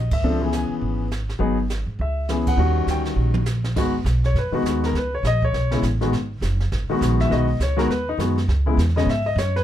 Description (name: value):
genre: jazz piano trio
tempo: 203 BPM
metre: 4/4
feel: swing 60% on 8ths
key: G# minor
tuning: A4 = 440 Hz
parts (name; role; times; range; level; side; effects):
- warm concert grand piano; melody; 0.0-9.6 s; C#3 to G#5; -22 LUFS; left 2 dB; none
- upright bass; bass; 0.0-9.6 s; F#1 to G#2; -22 LUFS; right 1 dB; none
- jazz brush drum kit; drums; 0.1-9.6 s; brushed snare drum, crash cymbal, hi-hat, kick drum, ride cymbal, snare drum, toms; -30 LUFS; right 3 dB; none
room: little or no reverb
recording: dark, warm production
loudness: -19 LUFS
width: side -11 dB against mid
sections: 0.0-3.8 A section; 3.8-9.6 B section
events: band accent 0.1, 2.4; drum fill 3.2-3.8; grand piano solo 3.8-9.6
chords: 0.2 C#m7; 1.4 G#m7; 2.0 C#m7; 2.6 D#7#9; 3.8 G#m7; 4.9 C#7(no3); 6.1 G#m7; 8.5 C#m7